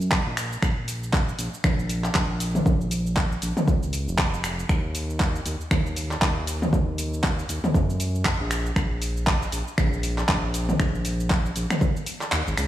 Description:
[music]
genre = afro house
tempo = 118 BPM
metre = 4/4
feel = swing 58% on 16ths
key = Eb minor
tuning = A4 = 440 Hz
[part]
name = smooth synth bass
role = bass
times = 0.0-12.7 s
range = F1 to Gb2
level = -27 LUFS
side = equal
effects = sidechain pumping
[part]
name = deep house drum kit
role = drums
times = 0.0-12.7 s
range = cabasa, finger snaps, handclaps, hi-hat, toms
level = -26 LUFS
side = equal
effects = none
[part]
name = electronic kick drum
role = drums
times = 0.1-11.9 s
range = none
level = -24 LUFS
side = equal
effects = none
[sound]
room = light reverb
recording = studio reverb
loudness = -22 LUFS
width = side -13 dB against mid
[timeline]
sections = 0.0-12.7 A section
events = kick drops out 12.3-12.7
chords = none

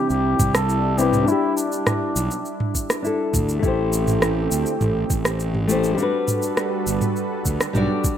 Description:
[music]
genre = sunset chillout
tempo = 102 BPM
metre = 4/4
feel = straight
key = G major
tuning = A4 = 441 Hz
[part]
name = trumpet with cup mute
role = melody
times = 0.0-2.7 s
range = D4 to A4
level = -26 LUFS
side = left 1 dB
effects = vintage 12-bit sampler grit, ping-pong delay
[part]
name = nylon-string guitar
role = accompaniment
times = 0.0-8.2 s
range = C3 to D5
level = -23 LUFS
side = moving between left 5 dB and right 5 dB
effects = auto-pan, low-pass filter, ping-pong delay
[part]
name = lush unison pad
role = sustained chords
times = 0.0-8.2 s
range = C3 to B4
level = -28 LUFS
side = right 2 dB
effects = chorus
[part]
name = fuzz fingered electric bass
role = bass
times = 0.1-7.9 s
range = G1 to D2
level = -24 LUFS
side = right 1 dB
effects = overdrive
[part]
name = smooth R&B drum kit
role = drums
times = 0.1-8.2 s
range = rim click, shaker, toms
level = -24 LUFS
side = right 1 dB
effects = none
[part]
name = electronic kick drum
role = drums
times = 0.4-8.2 s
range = none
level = -22 LUFS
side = right 1 dB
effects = none
[sound]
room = light reverb, digital ambience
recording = rough home demo mix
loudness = -19 LUFS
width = side -9 dB against mid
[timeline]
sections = 0.0-8.2 A section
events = filter sweep on nylon-string guitar 0.0-8.2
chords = 0.0 Cmaj7; 1.3 Em7; 3.6 Am7; 6.0 Gmaj7

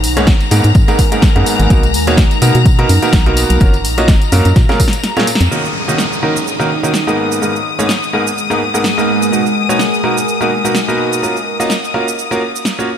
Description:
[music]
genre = piano house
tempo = 126 BPM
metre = 4/4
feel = swing 55% on 16ths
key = unclear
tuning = A4 = 440 Hz
[part]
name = clear studio string section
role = sustained chords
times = 0.0-13.0 s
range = Bb5 to Eb6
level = -20 LUFS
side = left 6 dB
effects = sidechain pumping
[part]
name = organ-like FM bass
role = bass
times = 0.0-5.5 s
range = Gb1 to B2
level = -13 LUFS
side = equal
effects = sidechain pumping
[part]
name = punchy analog drum machine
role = drums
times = 0.0-12.9 s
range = hi-hat, shaker, snare drum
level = -20 LUFS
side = right 1 dB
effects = overdrive
[part]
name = tambourine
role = percussion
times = 0.0-5.5 s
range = none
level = -26 LUFS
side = right 2 dB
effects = none
[part]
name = deep dark ambient pad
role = texture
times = 0.0-13.0 s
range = Ab3 to A#5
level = -21 LUFS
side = right 1 dB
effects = chorus, built-in reverb, sidechain pumping
[part]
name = bright concert grand piano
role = riff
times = 0.2-12.9 s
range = Ab2 to Eb5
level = -16 LUFS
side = right 1 dB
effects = sidechain pumping, diffuse ambient delay
[part]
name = electronic kick drum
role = drums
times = 0.3-4.9 s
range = none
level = -11 LUFS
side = equal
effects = overdrive
[part]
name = downlifter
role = sound effects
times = 5.5-9.3 s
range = none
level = -25 LUFS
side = equal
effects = none
[sound]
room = light reverb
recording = none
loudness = -10 LUFS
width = side -9 dB against mid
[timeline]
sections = 0.0-5.5 A section; 5.5-13.0 B section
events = drum fill 4.6-5.5; kick drops out 5.0-5.5; band accent 5.4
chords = 0.0 Abmadd9; 1.7 Bmaj7; 3.6 Gbmaj7; 4.6 Bbm7; 5.5 Abmadd9; 9.3 Bmaj7; 11.2 Gbmaj7

